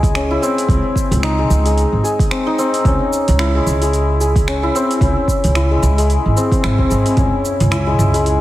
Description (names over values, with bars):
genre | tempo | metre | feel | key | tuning
organic downtempo | 111 BPM | 4/4 | swing 58% on 16ths | C# harmonic minor | A4 = 440 Hz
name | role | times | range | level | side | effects
santur | arpeggios | 0.0-8.4 s | G#3 to G#4 | -17 LUFS | left 1 dB | digital delay
upright bass | bass | 0.0-8.4 s | G#1 to C#2 | -16 LUFS | right 1 dB | sidechain pumping
afro-pop drum kit | drums | 0.0-8.4 s | finger snaps, hi-hat, shaker, toms | -24 LUFS | right 2 dB | overdrive, studio reverb
electronic kick drum | drums | 0.0-7.3 s | none | -17 LUFS | right 1 dB | overdrive, studio reverb
room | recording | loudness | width
light reverb, digital ambience | heavily compressed radio sound | -13 LUFS | side -15 dB against mid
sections
0.0-8.4 A section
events
none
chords
0.0 C#m; 0.7 G#/C#; 2.9 C#m; 5.0 G#add11; 7.2 C#m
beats
0.15 | 0.69 1.23 1.77 2.31 | 2.85 3.39 3.93 4.47 | 5.01 5.55 6.09 6.63 | 7.17 7.72 8.26